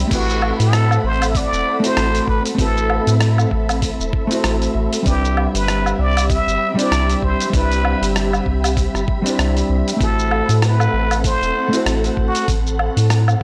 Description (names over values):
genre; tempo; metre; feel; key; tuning
sunset chillout; 97 BPM; 4/4; swing 57% on 16ths; A dorian; A4 = 439 Hz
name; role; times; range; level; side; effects
hollow-body jazz guitar; accompaniment; 0.0-12.5 s; G3 to C5; -25 LUFS; equal; none
soft string machine; sustained chords; 0.0-13.4 s; C4 to B5; -27 LUFS; equal; ensemble chorus
round analog bass; bass; 0.0-13.4 s; E1 to A2; -21 LUFS; equal; none
trumpet with plunger mute; melody; 0.1-12.5 s; F#4 to E5; -24 LUFS; equal; tape echo
dusty soul sampler-style drum kit; drums; 0.1-13.4 s; crash cymbal, hi-hat, rim click, shaker, woodblock; -26 LUFS; equal; none
electronic kick drum; drums; 0.1-13.4 s; none; -24 LUFS; equal; none
room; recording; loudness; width
digital ambience; dry, gritty hardware recording, cassette tape; -17 LUFS; mono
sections
0.0-13.4 A section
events
none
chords
0.1 Am69; 5.1 Cmaj7; 10.0 Am69